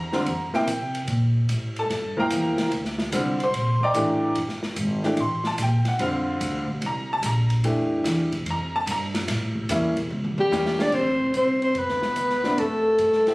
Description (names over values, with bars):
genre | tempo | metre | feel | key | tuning
modal jazz | 146 BPM | 4/4 | swing 67% on 8ths | G dorian | A4 = 441 Hz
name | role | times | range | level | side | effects
bright upright piano | accompaniment | 0.0-13.3 s | C3 to D6 | -24 LUFS | equal | none
upright bass | bass | 0.0-13.3 s | G1 to C3 | -27 LUFS | equal | none
open jazz drum kit | drums | 0.1-13.3 s | crash cymbal, hi-hat, kick drum, ride cymbal, snare drum, toms | -32 LUFS | equal | none
breathy soprano saxophone | melody | 10.4-13.3 s | G4 to D5 | -22 LUFS | left 1 dB | none
breathy tenor saxophone | second line | 10.4-13.3 s | G3 to D4 | -25 LUFS | equal | none
room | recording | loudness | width
light reverb | recorded on a phone in the room, studio reverb, compression | -21 LUFS | side -22 dB against mid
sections
0.0-10.9 A section; 10.9-13.3 B section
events
drum fill 10.1-10.9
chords
0.0 Gm7; 4.4 Bbsus2/G; 9.3 A7b9; 10.9 Dm7